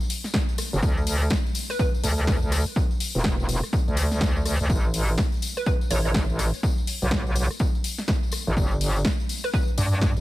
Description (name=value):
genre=bass house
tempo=124 BPM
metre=4/4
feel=swing 61% on 16ths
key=unclear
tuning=A4 = 437 Hz
part: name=tambourine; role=percussion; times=0.0-10.2 s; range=none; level=-35 LUFS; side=left 5 dB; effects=none
part: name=house drum kit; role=drums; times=0.1-10.1 s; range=hi-hat, rim click, snare drum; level=-30 LUFS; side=equal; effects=studio reverb
part: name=electronic kick drum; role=drums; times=0.3-10.1 s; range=none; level=-24 LUFS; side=equal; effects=overdrive, studio reverb
part: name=metallic wobble bass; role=bass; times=0.7-10.2 s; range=E1 to G2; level=-23 LUFS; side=equal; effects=chorus, overdrive, sidechain pumping
part: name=hollow square pluck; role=melody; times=1.7-1.9, 5.6-6.1, 9.4-9.6 s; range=B4 to C#5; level=-32 LUFS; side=right 2 dB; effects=analog chorus, ping-pong delay
room=little or no reverb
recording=none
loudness=-22 LUFS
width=side -17 dB against mid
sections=0.0-10.2 A section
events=none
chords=0.0 N.C.; 4.7 Asus2; 8.6 N.C.